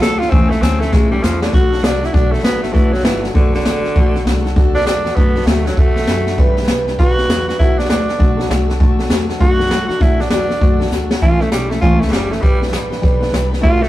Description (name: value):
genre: rockabilly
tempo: 198 BPM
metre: 4/4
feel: swing 63% on 8ths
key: D major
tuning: A4 = 440 Hz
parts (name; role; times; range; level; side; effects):
- raspy tenor saxophone; melody; 0.0-13.9 s; D3 to A4; -19 LUFS; right 2 dB; tape echo
- picked steel-string acoustic guitar; accompaniment; 0.0-13.9 s; A2 to B4; -19 LUFS; left 2 dB; none
- upright bass; bass; 0.0-13.9 s; F#1 to A2; -23 LUFS; equal; none
- jazz brush drum kit; drums; 0.0-13.9 s; hi-hat, kick drum, snare drum; -15 LUFS; equal; none
room: light reverb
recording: rough rehearsal-room recording, tube saturation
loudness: -12 LUFS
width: side -15 dB against mid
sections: 0.0-1.5 A section; 1.5-13.9 B section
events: tenor saxophone solo 0.0-1.5; drum fill 0.9-1.5, 10.9-11.2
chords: 0.3 A; 1.5 D; 6.4 G; 7.6 D; 11.2 A; 12.4 G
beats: 0.02 | 0.32 0.63 0.93 1.23 | 1.53 1.83 2.14 2.44 | 2.74 3.05 3.35 3.65 | 3.96 4.26 4.56 4.86 | 5.17 5.47 5.77 6.08 | 6.38 6.68 6.98 7.29 | 7.59 7.89 8.20 8.50 | 8.80 9.10 9.41 9.71 | 10.01 10.31 10.62 10.92 | 11.22 11.52 11.82 12.12 | 12.43 12.73 13.03 13.33 | 13.63